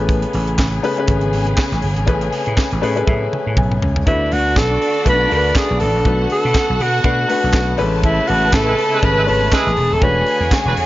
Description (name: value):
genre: disco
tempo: 121 BPM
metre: 4/4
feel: swing 56% on 16ths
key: unclear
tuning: A4 = 437 Hz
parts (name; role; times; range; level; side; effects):
- clear grand piano; accompaniment; 0.0-10.9 s; G#3 to G#5; -22 LUFS; left 3 dB; none
- warm studio string section; sustained chords; 0.0-10.9 s; C#3 to C#5; -26 LUFS; left 1 dB; none
- vintage slap bass; bass; 0.0-10.9 s; D#1 to B2; -20 LUFS; equal; none
- tight funk drum kit; drums; 0.1-10.9 s; handclaps, hi-hat, kick drum, snare drum, toms; -20 LUFS; equal; none
- breathy alto saxophone; melody; 4.1-10.5 s; E4 to B4; -17 LUFS; right 1 dB; none
- clear studio string section; second line; 4.1-10.9 s; A3 to A5; -24 LUFS; equal; none
- warm horn section; stabs; 8.7-10.7 s; F#3 to B4; -22 LUFS; right 4 dB; none
room: light reverb, small room ambience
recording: nothing above 7.5 kHz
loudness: -14 LUFS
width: side -16 dB against mid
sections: 0.0-4.1 A section; 4.1-10.9 B section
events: grand piano fill 2.6-4.1; drum fill 3.1-4.1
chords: 0.0 Amaj9; 4.1 D6; 6.0 Bm7; 7.8 Amaj9; 10.0 E13sus4